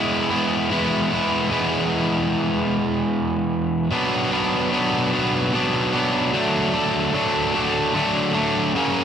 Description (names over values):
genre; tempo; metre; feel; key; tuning
rock; 50 BPM (dotted quarters); 6/8; straight; unclear; A4 = 442 Hz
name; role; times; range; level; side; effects
cranked stack guitar; solo; 0.0-9.0 s; F#2 to E4; -19 LUFS; equal; overdrive
room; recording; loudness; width
moderate studio reverb, RT60 0.9 s; none; -19 LUFS; side -8 dB against mid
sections
0.0-1.5 A section; 1.5-3.9 B section; 3.9-9.0 C section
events
none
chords
0.0 E; 3.9 Bm; 6.3 D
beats
0.30 | 1.51 2.71 | 3.92 5.13 | 6.33 7.54 | 8.75